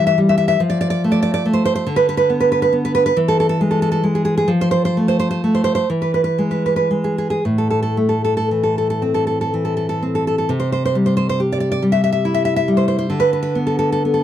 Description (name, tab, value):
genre	romantic piece for solo classical guitar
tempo	37-47 BPM (dotted quarters)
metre	6/8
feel	rubato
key	A minor, C major from 10.5 s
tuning	A4 = 439 Hz
part	nylon-string guitar	solo	0.0-14.2 s	A2 to E5	-15 LUFS	equal	none
room	light reverb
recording	dry, close 1970s-style studio recording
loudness	-15 LUFS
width	side -11 dB against mid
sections	0.0-10.5 A section; 10.5-14.2 B section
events	none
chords	0.0 Em; 0.6 F; 1.9 Bm/D; 3.2 E; 4.5 F; 5.9 E; 7.4 Am; 10.5 C; 13.1 Bm7/D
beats	0.61 | 1.88 3.16 | 4.50 5.89 | 7.42 9.00 | 10.50 11.83 | 13.14